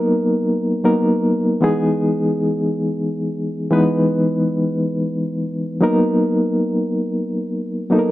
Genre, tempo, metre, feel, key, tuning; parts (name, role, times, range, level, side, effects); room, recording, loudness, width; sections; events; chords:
disco; free time; B major; A4 = 441 Hz
barky reed electric piano; solo; 0.0-8.1 s; E3 to B4; -16 LUFS; equal; overdrive, fast tremolo
light reverb, digital ambience; dark, warm production; -17 LUFS; side -16 dB against mid
0.0-5.8 A section; 5.8-8.1 B section
0.0 Bmaj7; 1.6 Emaj7; 5.8 Bmaj7